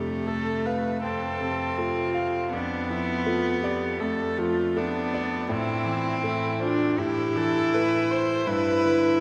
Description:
neoclassical piano and strings; 80 BPM; 4/4; rubato; A minor; A4 = 443 Hz
rich cello; second line; 0.0-9.2 s; A3 to E4; -29 LUFS; equal
bright grand piano; accompaniment; 0.0-9.2 s; F2 to F5; -32 LUFS; equal
warm viola; accompaniment; 0.0-9.2 s; D4 to C5; -31 LUFS; equal
wet cathedral reverb, RT60 4.6 s; recorded in a church or concert hall; -26 LUFS; mono
0.0-9.2 A section
0.0 F; 2.5 Dm/F; 5.5 Am; 8.5 G5

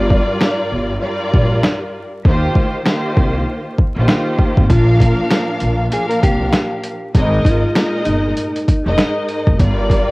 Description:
hip hop, boom-bap hip-hop; 98 BPM; 4/4; swing 60% on 16ths; Bb mixolydian; A4 = 435 Hz
warm studio string section; accompaniment; 0.0-10.1 s; G2 to F5; -19 LUFS; equal; cassette tape, high-pass filter, low-pass filter
upright bass; bass; 0.0-10.0 s; F1 to Eb2; -17 LUFS; equal
boom bap sampler-style drum kit; drums; 0.1-10.1 s; hi-hat, kick drum, snare drum; -15 LUFS; equal; overdrive, vintage 12-bit sampler grit, cassette tape
mellow electric guitar; melody; 4.7-9.6 s; Eb4 to Bb4; -21 LUFS; equal; high-pass filter, low-pass filter, cassette tape
studio reverb; home recording on cassette, vinyl crackle; -13 LUFS; side -23 dB against mid
0.0-10.1 A section
break 0.0-4.7
0.0 Gm7; 2.2 Eb6; 4.7 Bb; 7.1 Absus2; 9.6 Gm7

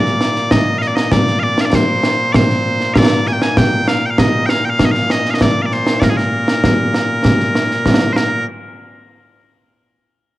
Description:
scottish traditional, Scottish pipe music; 98 BPM; 4/4; straight; Bb major; A4 = 440 Hz
loud bright bagpipes; melody; 0.0-8.4 s; Bb2 to Ab5; -16 LUFS; equal; cassette tape
concert snare drum and concert bass drum; drums; 0.1-8.4 s; -14 LUFS; equal; cassette tape
moderate spring reverb, RT60 2.3 s; home recording on cassette; -12 LUFS; side -16 dB against mid
0.0-8.5 A section; 8.5-10.4 B section

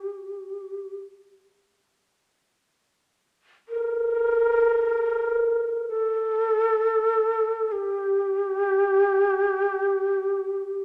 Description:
japanese traditional, Japanese chamber music; free time; G minor; A4 = 439 Hz
breathy mellow shakuhachi; solo; 0.0-10.8 s; G4 to Bb4; -24 LUFS; equal
wet recital hall reverb, RT60 1.4 s; -24 LUFS; mono
0.0-1.6 A section; 1.6-10.8 A section

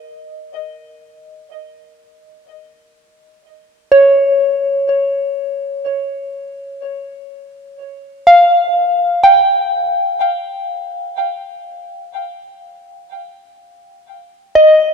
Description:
ambient; free time; Eb mixolydian; A4 = 440 Hz
soft synth bell; solo; 0.0-14.9 s; Db5 to G5; -12 LUFS; equal; chorus, ping-pong delay
wet plate reverb, RT60 3.1 s; dreamy mix soaked in reverb; -11 LUFS; side -6 dB against mid
0.0-8.8 A section; 8.8-14.9 B section

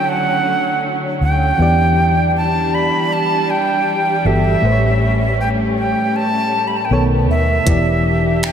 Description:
contemporary R&B; 79 BPM; 4/4; swing 54% on 16ths; E dorian; A4 = 441 Hz
silver concert flute; melody; 0.0-8.5 s; E5 to B5; -18 LUFS; right 1 dB; ping-pong delay
FM electric piano with auto-pan; accompaniment; 0.0-8.5 s; A2 to D5; -20 LUFS; equal
dark studio string section; sustained chords; 0.0-8.5 s; D3 to G4; -21 LUFS; left 1 dB; sidechain pumping
vintage muted fingered electric bass; bass; 1.2-8.5 s; E1 to E2; -18 LUFS; equal
gated 80s digital drum machine; drums; 7.7-8.5 s; finger snaps, hi-hat, kick drum; -17 LUFS; equal; overdrive
wet cathedral reverb, RT60 5.2 s; dreamy mix soaked in reverb, faint mains hum; -14 LUFS; side -8 dB against mid
0.0-8.5 A section
0.0 Dmaj7; 1.6 Em7; 4.6 A7; 6.9 B7; 7.7 Em7

